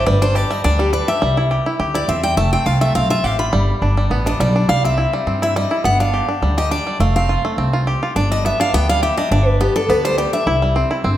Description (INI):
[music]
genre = bluegrass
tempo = 208 BPM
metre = 4/4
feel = straight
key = unclear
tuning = A4 = 440 Hz
[part]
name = bluegrass banjo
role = melody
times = 0.0-11.2 s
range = G3 to G4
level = -20 LUFS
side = right 1 dB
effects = none
[part]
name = picked steel-string acoustic guitar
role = accompaniment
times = 0.0-10.7 s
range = G4 to B5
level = -19 LUFS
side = left 1 dB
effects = none
[part]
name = upright bass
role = bass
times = 0.0-11.2 s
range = F1 to G2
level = -18 LUFS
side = equal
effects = none
[sound]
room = moderate recital hall reverb, RT60 1.4 s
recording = none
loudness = -15 LUFS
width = side -12 dB against mid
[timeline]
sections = 0.0-2.4 A section; 2.4-11.2 A section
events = steel-string acoustic guitar solo 0.0-11.2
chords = 0.1 G5; 1.2 C; 2.4 F; 3.5 G; 4.7 C; 5.8 G; 7.0 F; 8.2 G; 10.5 C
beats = | 0.07 0.36 0.65 0.94 | 1.22 1.51 1.80 2.09 | 2.38 2.67 2.96 3.25 | 3.54 3.82 4.11 4.40 | 4.69 4.98 5.27 5.56 | 5.85 6.14 6.43 6.71 | 7.00 7.29 7.58 7.87 | 8.16 8.45 8.74 9.03 | 9.32 9.60 9.89 10.18 | 10.47 10.76 11.05